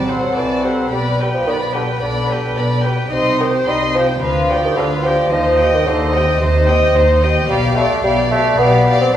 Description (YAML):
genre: quick classical-period movement for symphony orchestra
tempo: 109 BPM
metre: 4/4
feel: rubato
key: C minor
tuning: A4 = 436 Hz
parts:
  - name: warm chamber violin section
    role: melody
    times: 0.0-9.2 s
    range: Eb5 to C6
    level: -24 LUFS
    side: left 1 dB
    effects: none
  - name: warm chamber violin section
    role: second line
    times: 0.0-9.2 s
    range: B4 to Eb5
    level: -20 LUFS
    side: left 2 dB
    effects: none
  - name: warm bassoon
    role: accompaniment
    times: 0.0-9.2 s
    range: C3 to D4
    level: -17 LUFS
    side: right 1 dB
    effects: none
  - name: warm studio viola section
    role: accompaniment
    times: 0.0-9.2 s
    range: Eb4 to B4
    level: -24 LUFS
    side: equal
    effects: none
  - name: dark chamber cello section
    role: bass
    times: 0.0-9.2 s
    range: D2 to C3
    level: -23 LUFS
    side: equal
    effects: none
  - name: dark chamber double bass section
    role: bass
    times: 0.0-9.2 s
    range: B1 to Eb2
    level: -21 LUFS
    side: equal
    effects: none
  - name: timpani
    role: percussion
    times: 0.0-0.6 s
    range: C3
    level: -30 LUFS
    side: equal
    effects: none
room: wet recital hall reverb, RT60 1.4 s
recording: recorded in a church or concert hall, small room ambience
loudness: -13 LUFS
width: side -10 dB against mid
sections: 0.0-9.2 A section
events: none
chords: 0.0 D7/C; 0.9 G/B; 3.1 Cm; 4.2 G7/D; 5.3 Cm/Eb; 7.5 G7/B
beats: 0.36 | 0.91 1.47 2.02 2.57 | 3.12 3.68 4.22 4.77 | 5.32 5.87 6.41 6.96 | 7.49 8.04 8.59 9.13